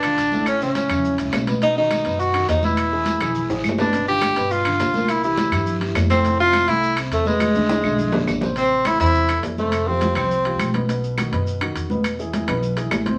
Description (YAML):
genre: latin, salsa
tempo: 207 BPM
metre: 4/4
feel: straight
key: A minor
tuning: A4 = 440 Hz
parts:
  - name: clear tenor saxophone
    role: melody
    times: 0.0-10.7 s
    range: G#3 to G4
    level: -22 LUFS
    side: equal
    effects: none
  - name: dark grand piano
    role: accompaniment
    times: 0.0-13.2 s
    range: A2 to C5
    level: -28 LUFS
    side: equal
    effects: none
  - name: upright bass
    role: bass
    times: 0.0-13.2 s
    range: G1 to G2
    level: -29 LUFS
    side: equal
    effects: none
  - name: claves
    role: percussion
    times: 0.0-13.1 s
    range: none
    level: -32 LUFS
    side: equal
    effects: none
  - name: congas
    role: percussion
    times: 0.0-13.2 s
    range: none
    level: -28 LUFS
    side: equal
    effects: none
  - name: maracas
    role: percussion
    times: 0.0-13.2 s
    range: none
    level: -45 LUFS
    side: equal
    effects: none
  - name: timbales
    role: percussion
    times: 0.0-13.2 s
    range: none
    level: -31 LUFS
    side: equal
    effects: none
  - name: guiro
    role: percussion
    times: 0.2-8.6 s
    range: none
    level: -40 LUFS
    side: equal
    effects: none
room: wet studio reverb, RT60 0.6 s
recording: vinyl crackle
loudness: -20 LUFS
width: mono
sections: 0.0-8.6 A section; 8.6-13.2 B section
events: drum fill 3.5-3.9, 7.4-8.6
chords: 0.5 A; 1.6 B; 2.8 E; 3.9 G7; 5.1 C7; 6.2 Fmaj7; 7.4 E7; 8.6 Am; 9.7 Fsus2; 10.9 B; 12.0 E